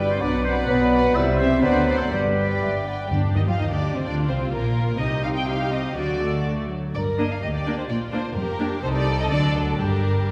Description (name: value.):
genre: quick classical-period movement for symphony orchestra.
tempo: 126 BPM.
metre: 2/4.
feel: rubato.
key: G major, G minor from 3.1 s.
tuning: A4 = 441 Hz.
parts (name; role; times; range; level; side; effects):
warm studio violin section; melody; 0.0-10.3 s; A4 to G5; -33 LUFS; equal; none.
mellow hollow silver concert flute; second line; 0.0-3.1 s; D5 to G5; -33 LUFS; equal; none.
warm clarinet; second line; 0.0-2.9 s; B4 to C5; -32 LUFS; equal; none.
warm studio violin section; second line; 0.0-10.3 s; Eb4 to E5; -34 LUFS; equal; none.
clear studio viola section; accompaniment; 0.0-10.3 s; F#3 to C5; -32 LUFS; equal; none.
warm bassoon; accompaniment; 0.0-2.9 s; F#3 to G3; -30 LUFS; equal; none.
mellow French horn section; sustained chords; 0.0-2.9 s; G3 to E4; -25 LUFS; equal; none.
dark studio cello section; bass; 0.0-10.3 s; D2 to F3; -30 LUFS; equal; none.
dark studio double bass section; bass; 0.0-10.3 s; F1 to Eb2; -30 LUFS; equal; none.
clear oboe; second line; 0.1-2.8 s; G4 to E5; -32 LUFS; equal; none.
timpani; percussion; 2.1-3.8 s; G2; -29 LUFS; equal; none.
room: wet scoring stage reverb, RT60 2.0 s.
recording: heard from further back in the room.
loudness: -22 LUFS.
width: mono.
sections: 0.0-3.1 A section; 3.1-10.3 B section.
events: none.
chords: 0.2 Bm; 1.2 C; 1.6 D7; 2.1 G; 3.1 G5/D; 4.1 Bb; 5.0 Cm; 6.0 D; 6.9 Gm; 7.9 Bb; 8.8 Cm; 9.3 D; 9.8 Gm.